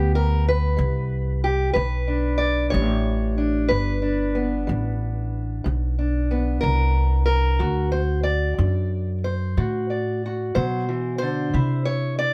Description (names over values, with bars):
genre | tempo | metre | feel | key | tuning
acoustic country blues, solo or duo | 61 BPM (dotted quarters) | 12/8 | straight | G major | A4 = 440 Hz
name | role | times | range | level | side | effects
fingerpicked steel-string acoustic guitar | melody | 0.0-12.3 s | G2 to D5 | -27 LUFS | equal | none
upright bass | bass | 0.0-12.3 s | G1 to C3 | -25 LUFS | equal | none
room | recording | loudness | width
little or no reverb | none | -23 LUFS | mono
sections
0.0-12.3 A section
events
none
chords
0.0 G; 7.6 D; 11.5 C